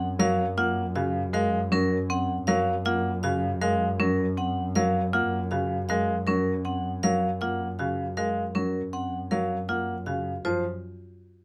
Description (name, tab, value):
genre	classical, minimalist pattern music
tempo	158 BPM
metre	6/4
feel	straight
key	Gb lydian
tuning	A4 = 442 Hz
part	vibraphone with hard mallets	melody	0.0-10.6 s	Bb4 to Gb5	-32 LUFS	equal	none
part	marimba with hard mallets	arpeggios	0.0-10.6 s	C4 to Bb4	-33 LUFS	equal	none
part	warm double bass	bass	0.0-10.6 s	Gb2	-34 LUFS	equal	none
part	clear baby grand piano	accompaniment	0.2-10.6 s	Db3 to Bb3	-31 LUFS	equal	none
room	light reverb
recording	close, detailed microphones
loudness	-27 LUFS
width	mono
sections	0.0-10.4 A section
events	none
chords	0.0 Gbmaj7; 10.4 F5